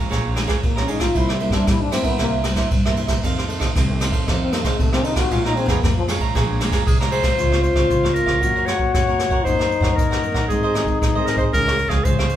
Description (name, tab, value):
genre	samba and choro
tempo	116 BPM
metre	4/4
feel	straight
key	Bb minor, Db major from 7.4 s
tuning	A4 = 440 Hz
part	cavaquinho	accompaniment	0.0-12.4 s	Eb4 to Bb5	-27 LUFS	right 5 dB	none
part	nylon-string guitar	accompaniment	0.0-12.4 s	F2 to E4	-28 LUFS	left 1 dB	none
part	upright bass	bass	0.0-12.4 s	Bb1 to Ab2	-24 LUFS	equal	none
part	jazz brush drum kit	drums	0.1-12.4 s	hi-hat, kick drum, ride cymbal, rim click	-21 LUFS	equal	none
part	breathy trombone	second line	0.6-12.3 s	F3 to Gb4	-23 LUFS	left 4 dB	none
part	clear clarinet	melody	6.9-12.4 s	Ab4 to Db5	-22 LUFS	left 1 dB	none
room	wet large studio reverb, RT60 1.1 s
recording	band playing live in one room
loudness	-17 LUFS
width	side -11 dB against mid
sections	0.0-7.4 A section; 7.4-12.4 B section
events	trombone solo 0.0-7.4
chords	0.0 Bbm7; 1.2 C7; 3.2 F7; 5.3 Bbm7; 7.4 Dbmaj7; 8.4 Gbmaj7; 9.5 Ebm7/Gb; 10.5 Ab; 11.5 Db